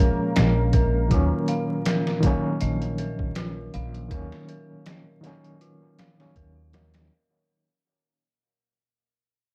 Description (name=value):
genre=trip hop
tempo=80 BPM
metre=4/4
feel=swing 55% on 16ths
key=unclear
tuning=A4 = 442 Hz
part: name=overdriven reed electric piano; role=accompaniment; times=0.0-7.1 s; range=Eb3 to Eb4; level=-30 LUFS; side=equal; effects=tremolo, vintage 12-bit sampler grit, tape echo
part: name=deep dark ambient pad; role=sustained chords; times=0.0-7.1 s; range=Bb3 to Bb4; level=-36 LUFS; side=equal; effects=chorus, built-in reverb, vintage 12-bit sampler grit
part: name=dark detuned synth bell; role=arpeggios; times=0.0-7.1 s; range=F4 to F5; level=-36 LUFS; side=equal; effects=chorus, vintage 12-bit sampler grit, tape echo
part: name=upright bass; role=bass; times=0.4-7.1 s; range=Bb1 to Eb2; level=-28 LUFS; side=equal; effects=none
part: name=trip hop sampler-style drum kit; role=drums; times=0.4-7.1 s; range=hi-hat, kick drum, snare drum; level=-26 LUFS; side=equal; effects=overdrive
room=little or no reverb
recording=dark, warm production, vinyl crackle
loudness=-24 LUFS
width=mono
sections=0.0-7.1 A section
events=fade-out 0.0-7.1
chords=0.0 Bbm7; 1.1 Ebm7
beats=0.36 | 1.11 1.86 2.61 3.36 | 4.11 4.86 5.61 6.36